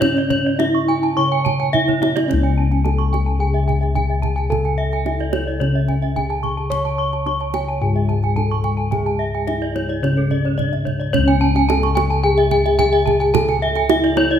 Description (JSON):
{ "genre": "Balinese gamelan", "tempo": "109 BPM", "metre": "4/4", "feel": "straight", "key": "C# pelog", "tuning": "A4 = 440 Hz", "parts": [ { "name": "gamelan-type bronze metallophone", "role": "melody", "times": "0.0-14.4 s", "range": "C#4 to C#5", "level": "-21 LUFS", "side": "equal", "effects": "none" }, { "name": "gamelan-type bronze metallophone", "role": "arpeggios", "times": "0.0-14.4 s", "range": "C#5 to C#6", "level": "-23 LUFS", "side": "left 2 dB", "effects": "none" }, { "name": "gamelan-type bronze metallophone", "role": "arpeggios", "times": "0.0-14.2 s", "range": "A4-20c to C#6", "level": "-26 LUFS", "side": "right 9 dB", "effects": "none" }, { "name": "gamelan-type bossed gongs", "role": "bass", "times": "0.0-14.4 s", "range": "C#2 to C#5", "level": "-20 LUFS", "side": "left 2 dB", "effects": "none" }, { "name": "kendang", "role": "percussion", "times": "0.0-14.3 s", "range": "none", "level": "-26 LUFS", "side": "right 9 dB", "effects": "none" } ], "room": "moderate recital hall reverb, RT60 1.6 s", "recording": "none", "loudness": "-16 LUFS", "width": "side -9 dB against mid", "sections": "0.0-2.3 A section; 2.3-14.4 B section", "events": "drum fill 1.7-2.3", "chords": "none" }